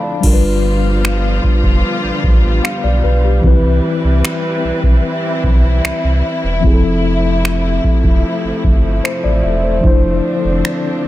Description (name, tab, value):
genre	contemporary R&B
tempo	75 BPM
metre	4/4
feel	straight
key	unclear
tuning	A4 = 439 Hz
part	mellow tine electric piano	accompaniment	0.0-11.1 s	E3 to B5	-18 LUFS	left 3 dB	medium stereo tremolo
part	warm studio string section	sustained chords	0.0-11.1 s	C3 to B4	-20 LUFS	equal	sidechain pumping
part	sub bass with octave	bass	0.2-11.1 s	E1 to C2	-16 LUFS	equal	none
part	booming analog drum machine	drums	0.2-10.8 s	crash cymbal, finger snaps, kick drum	-14 LUFS	equal	none
room	little or no reverb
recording	none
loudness	-12 LUFS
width	side -15 dB against mid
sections	0.2-11.1 A section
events	none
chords	0.2 G7; 3.4 Cmaj7; 6.6 Fmaj7; 9.8 Dm7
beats	| 0.24 1.04 1.84 2.64 | 3.44 4.24 5.04 5.84 | 6.64 7.44 8.24 9.04 | 9.84 10.64